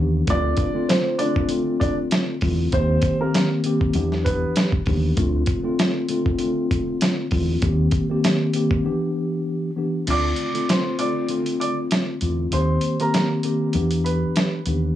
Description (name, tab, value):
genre	hip hop, boom-bap hip-hop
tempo	98 BPM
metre	4/4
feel	swing 54% on 16ths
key	D dorian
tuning	A4 = 440 Hz
part	mellow tine electric piano	accompaniment	0.0-15.0 s	D3 to G4	-22 LUFS	left 1 dB	medium stereo tremolo, cassette tape, high-pass filter, low-pass filter
part	deep dub fingered electric bass	bass	0.0-14.9 s	D2 to E2	-22 LUFS	equal	tube saturation
part	warm upright piano	melody	0.3-4.7, 10.1-14.5 s	Bb3 to D6	-26 LUFS	right 1 dB	high-pass filter, low-pass filter, tape echo
part	dusty soul sampler-style drum kit	drums	0.3-14.8 s	crash cymbal, hi-hat, kick drum, snare drum	-23 LUFS	equal	none
room	light reverb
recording	dry, gritty hardware recording, transformer saturation, cassette tape, small room ambience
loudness	-19 LUFS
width	side -12 dB against mid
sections	0.0-10.1 A section; 10.1-15.0 B section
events	break 0.0, 8.8-10.1; kick muted 10.1-15.0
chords	0.3 Dm7; 2.7 Eb6; 4.0 Em7; 5.2 Dm7; 7.6 Eb6; 8.8 Em7; 10.1 Dm7; 12.5 Eb6; 13.7 Em7